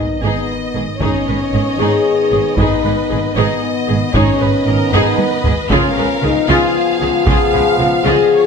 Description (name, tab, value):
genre	cinematic, epic orchestral film score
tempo	77 BPM (dotted quarters)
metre	6/8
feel	straight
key	G# minor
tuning	A4 = 440 Hz
part	clear symphonic violin section	melody	0.0-8.5 s	D#5 to E#5	-25 LUFS	left 2 dB	none
part	clear symphonic viola section	accompaniment	0.0-8.3 s	D#4 to B4	-20 LUFS	right 1 dB	none
part	warm French horn section	sustained chords	0.0-8.5 s	B3 to G#4	-17 LUFS	left 6 dB	none
part	warm trombone section	sustained chords	0.0-8.5 s	D#3 to B3	-22 LUFS	right 5 dB	none
part	clear symphonic cello section	bass	0.0-8.1 s	G#2 to C#3	-22 LUFS	right 3 dB	none
part	warm symphonic double bass section	bass	0.0-8.1 s	G#1 to C#2	-21 LUFS	right 4 dB	none
part	sub drop	sound effects	0.0-1.0 s	none	-30 LUFS	equal	none
part	clear symphonic violin section	second line	0.2-8.5 s	G#4 to E#5	-23 LUFS	left 2 dB	none
part	taiko ensemble	drums	1.0-7.8 s	none	-19 LUFS	equal	none
room	moderate scoring stage reverb, RT60 1.5 s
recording	none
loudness	-12 LUFS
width	side -6 dB against mid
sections	0.0-8.5 A section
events	impact 0.0-1.0; drum fill 4.9-5.7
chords	0.0 G#m; 5.7 C#7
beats	0.23 | 1.01 1.79 | 2.58 3.36 | 4.14 4.92 | 5.71 6.49 | 7.27 8.05